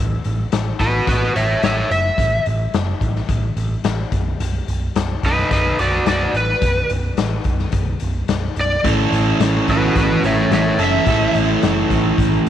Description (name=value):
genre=blues rock power trio and southern rock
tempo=108 BPM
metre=4/4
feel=straight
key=unclear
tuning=A4 = 437 Hz
part: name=overdriven picked electric bass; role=bass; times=0.0-12.5 s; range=B0 to A1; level=-21 LUFS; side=right 1 dB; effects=none
part: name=raw garage drum kit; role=drums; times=0.2-12.5 s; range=hi-hat, kick drum, snare drum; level=-22 LUFS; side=left 3 dB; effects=none
part: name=overdriven slide guitar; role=melody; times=0.8-11.4 s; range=D#4 to E5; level=-20 LUFS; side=equal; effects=none
part: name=overdriven electric guitar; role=riff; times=8.8-12.5 s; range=A2 to A4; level=-16 LUFS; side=right 1 dB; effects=none
room=light reverb, studio reverb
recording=1960s-style stereo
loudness=-15 LUFS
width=side -10 dB against mid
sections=0.0-12.5 A section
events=none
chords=0.0 A5; 4.1 N.C.; 8.9 A